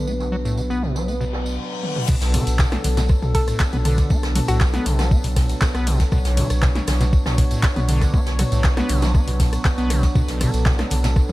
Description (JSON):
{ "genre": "acid house", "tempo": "119 BPM", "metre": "4/4", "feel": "straight", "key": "B minor", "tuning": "A4 = 441 Hz", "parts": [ { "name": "warm analog pad", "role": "sustained chords", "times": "0.0-11.3 s", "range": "F#3 to C#5", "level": "-28 LUFS", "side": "equal", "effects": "chorus, sidechain pumping" }, { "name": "acid bass, square", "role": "riff", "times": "0.0-11.1 s", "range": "B1 to B3", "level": "-26 LUFS", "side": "equal", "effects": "overdrive, sidechain pumping, tape echo" }, { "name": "warm sub bass", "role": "bass", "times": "0.0-11.3 s", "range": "B1", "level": "-22 LUFS", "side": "equal", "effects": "sidechain pumping" }, { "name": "jazz brush drum kit", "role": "drums", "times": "0.1-11.3 s", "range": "hi-hat, snare drum, tambourine", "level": "-34 LUFS", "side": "right 1 dB", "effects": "high-pass filter on hats, low-pass filter on hats, high-pass filter on snare, low-pass filter on snare, high-pass filter on perc, low-pass filter on perc, high-pass filter on room, low-pass filter on room, tape echo" }, { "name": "tambourine", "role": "percussion", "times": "0.1-11.3 s", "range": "none", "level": "-39 LUFS", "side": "right 4 dB", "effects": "tape echo" }, { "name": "reverse cymbal", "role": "sound effects", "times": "1.3-2.1 s", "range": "none", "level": "-31 LUFS", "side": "left 4 dB", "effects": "none" }, { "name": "punchy analog drum machine", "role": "drums", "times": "1.8-11.3 s", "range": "crash cymbal, handclaps, hi-hat, ride cymbal, rim click, snare drum, toms", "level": "-26 LUFS", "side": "equal", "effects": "overdrive, low-pass filter on toms, low-pass filter on cymbals, low-pass filter on hats, low-pass filter on snare" }, { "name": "electronic kick drum", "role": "drums", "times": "2.1-11.3 s", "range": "none", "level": "-18 LUFS", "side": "equal", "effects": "none" }, { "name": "hollow square pluck", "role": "melody", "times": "3.3-5.0 s", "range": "F#4 to A4", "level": "-30 LUFS", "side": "left 1 dB", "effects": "chorus, analog delay" } ], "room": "little or no reverb", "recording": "echo-heavy mix", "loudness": "-17 LUFS", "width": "side -18 dB against mid", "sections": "0.0-2.1 A section; 2.1-11.3 B section", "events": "reverse cymbal 1.3-2.1; drum fill 1.8; drop 2.1-11.3", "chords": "0.0 Bm; 2.1 Bm7" }